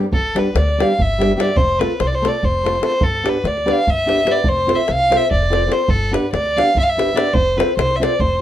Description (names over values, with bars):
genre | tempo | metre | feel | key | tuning
balkan folk, Balkan wedding band | 291 BPM (eighths) | 7/8 | straight | G mixolydian | A4 = 439 Hz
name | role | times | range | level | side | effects
nylon-string guitar | accompaniment | 0.0-8.4 s | G3 to C5 | -20 LUFS | equal | none
warm fiddle | melody | 0.1-8.4 s | A4 to F5 | -18 LUFS | equal | none
upright bass | bass | 0.1-8.4 s | F1 to D2 | -23 LUFS | equal | none
davul | percussion | 0.1-8.3 s | none | -21 LUFS | left 1 dB | none
room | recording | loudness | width
moderate studio reverb, RT60 0.6 s | minimal, uncompressed stereo recording | -14 LUFS | side -11 dB against mid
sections
0.1-8.4 A section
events
none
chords
0.1 G; 1.6 F; 3.0 G; 4.4 F; 5.9 G; 7.3 F